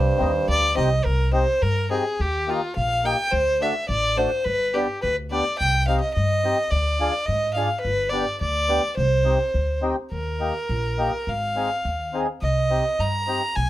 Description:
alpine folk, alpine dance band; 105 BPM; 2/4; straight; C minor, Eb major from 10.1 s; A4 = 440 Hz
rich fiddle; melody; 0.0-13.7 s; F4 to Bb5; -23 LUFS; equal
clear euphonium; second line; 0.0-0.8 s; G2; -27 LUFS; right 5 dB
upright bass; bass; 0.0-13.7 s; G1 to Ab2; -25 LUFS; equal
mellow accordion; accompaniment; 0.2-13.4 s; A3 to Ab4; -26 LUFS; left 2 dB
light reverb; -20 LUFS; side -14 dB against mid
0.0-1.1 A section; 1.1-10.1 A section; 10.1-13.7 B section
0.0 Cm; 2.2 Eb; 3.3 D; 4.5 G; 5.6 Cm; 6.7 Ddim; 7.8 G; 9.0 Cm; 10.1 Eb; 11.3 Ab; 12.4 Cm
0.48 | 1.06 1.63 | 2.20 2.76 | 3.32 3.89 | 4.45 5.02 | 5.59 6.16 | 6.72 7.28 | 7.85 8.41 | 8.97 9.54 | 10.12 10.70 | 11.28 11.86 | 12.43 13.00 | 13.58

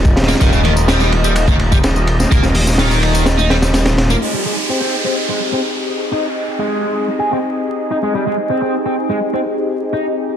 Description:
breakbeat, breaks; 126 BPM; 4/4; straight; A4 = 440 Hz
phased analog pad; sustained chords; 0.0-10.4 s; Bb3 to Eb5; -20 LUFS; equal; phaser, chorus, sidechain pumping
detuned saw bass; bass; 0.0-4.2 s; Eb1; -16 LUFS; equal
crunchy breakbeat drum kit; drums; 0.1-4.1 s; hi-hat, kick drum, ride cymbal, snare drum; -16 LUFS; equal
tambourine; drums; 0.1-4.2 s; -29 LUFS; left 4 dB; low-pass filter on perc
overdriven electric guitar; riff; 0.3-10.0 s; Db3 to Ab4; -20 LUFS; equal; vintage 12-bit sampler grit, low-pass filter, ping-pong delay
congas; percussion; 0.3-4.2 s; -26 LUFS; left 4 dB
downlifter; sound effects; 4.2-8.0 s; -23 LUFS; right 2 dB
moderate lush hall reverb, RT60 2.0 s; dense, heavily limited modern master, vinyl crackle; -13 LUFS; side -9 dB against mid
0.0-4.2 A section; 4.2-10.4 B section
filter sweep on analog synth pad 4.2-10.4
0.0 Ebadd9; 4.2 Abmaj7
| 0.41 0.89 1.36 1.84 | 2.31 2.79 3.27 3.74 | 4.22 4.69 5.17 5.65 | 6.12 6.60 7.08 7.55 | 8.03 8.50 8.98 9.46 | 9.93

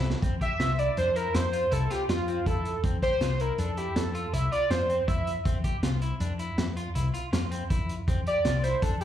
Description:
progressive instrumental, band music in an uneven meter; 161 BPM; 7/4; straight; F major; A4 = 440 Hz
electric guitar at the edge of break-up; arpeggios; 0.0-9.0 s; C4 to G4; -37 LUFS; left 1 dB; slapback echo, ping-pong delay
hollow-body short-scale picked electric bass; bass; 0.0-9.0 s; C2 to F2; -29 LUFS; left 1 dB
crunchy breakbeat drum kit; drums; 0.1-9.0 s; hi-hat, kick drum, snare drum; -31 LUFS; equal
pulse-width lead; melody; 0.4-9.0 s; F4 to E5; -28 LUFS; right 1 dB; chorus, slapback echo
light reverb, small room ambience; live gig heard through the venue's PA, club reverb; -25 LUFS; side -11 dB against mid
0.2-9.0 A section
drum fill 0.0; analog synth lead solo 0.2-9.0
0.2 Fmaj7(no3)
| 0.23 0.60 0.97 1.35 1.72 2.09 2.47 | 2.84 3.21 3.59 3.96 4.33 4.71 5.08 | 5.46 5.83 6.20 6.58 6.95 7.32 7.70 | 8.07 8.45 8.82

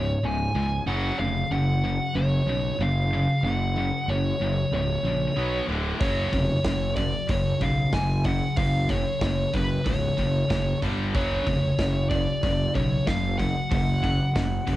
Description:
heavy metal; 94 BPM; 4/4; straight; A4 = 440 Hz
dark smooth lead guitar; melody; 0.0-14.8 s; B4 to G#5; -29 LUFS; equal; overdrive, cassette tape
high-gain distorted guitar; riff; 0.0-14.8 s; C#2 to B3; -31 LUFS; right 6 dB; distortion
scooped high-gain guitar; riff; 0.0-14.8 s; C#2 to B3; -29 LUFS; left 5 dB; distortion
fuzz fingered electric bass; bass; 0.0-14.8 s; C#1 to C#2; -27 LUFS; equal; overdrive
big rock drum kit; drums; 6.0-14.8 s; hi-hat, kick drum, snare drum; -29 LUFS; equal; cassette tape
small room ambience; home recording on cassette; -22 LUFS; side -15 dB against mid
0.0-14.8 A section
0.0 C#5; 0.9 F#5; 5.4 B5; 5.7 D5; 6.0 F#5; 10.8 G5; 11.1 F#5
0.24 | 0.88 1.52 2.16 2.80 | 3.44 4.09 4.73 5.37 | 6.01 6.65 7.29 7.94 | 8.58 9.22 9.86 10.51 | 11.15 11.79 12.43 13.08 | 13.72 14.36

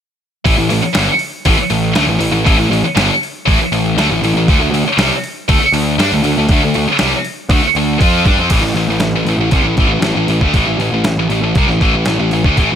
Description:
hard rock; 119 BPM; 4/4; straight; A4 = 440 Hz
heavy high-gain guitar; riff; 0.5-12.8 s; G2 to F4; -14 LUFS; equal; distortion
fuzz picked electric bass; bass; 0.5-12.8 s; G1 to G2; -17 LUFS; equal; overdrive
boom bap sampler-style drum kit; drums; 0.5-12.7 s; crash cymbal, hi-hat, kick drum, snare drum; -17 LUFS; equal
little or no reverb; -11 LUFS; side -8 dB against mid
0.5-8.5 A section; 8.5-12.8 B section
kick and snare drop out 8.0-8.5
0.5 A5; 4.5 D5; 8.5 A5
| 0.46 0.96 1.47 1.97 | 2.48 2.98 3.48 3.98 | 4.49 4.99 5.50 6.00 | 6.50 7.01 7.51 8.02 | 8.52 9.03 9.54 10.04 | 10.55 11.06 11.56 12.07 | 12.58

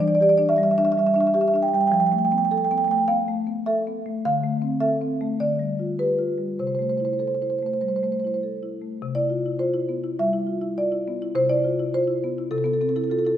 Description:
classical, contemporary piece for solo marimba; 103 BPM; 4/4; straight; C major; A4 = 442 Hz
marimba with medium mallets; solo; 0.0-13.4 s; C3 to G5; -20 LUFS; equal
moderate recital hall reverb, RT60 1.7 s; minimal, uncompressed stereo recording; -20 LUFS; side -10 dB against mid
0.0-9.0 A section; 9.0-13.4 B section
0.0 Em7; 1.9 Fmaj7#11; 4.2 Dm7; 5.4 Dmadd11; 6.6 C6; 9.0 Cmaj7; 11.4 Amadd9/C
0.19 0.77 1.35 | 1.92 2.50 3.07 3.65 | 4.22 4.80 5.38 5.98 | 6.59 7.20 7.81 8.42 | 9.02 9.61 10.19 10.78 | 11.36 11.95 12.53 13.11

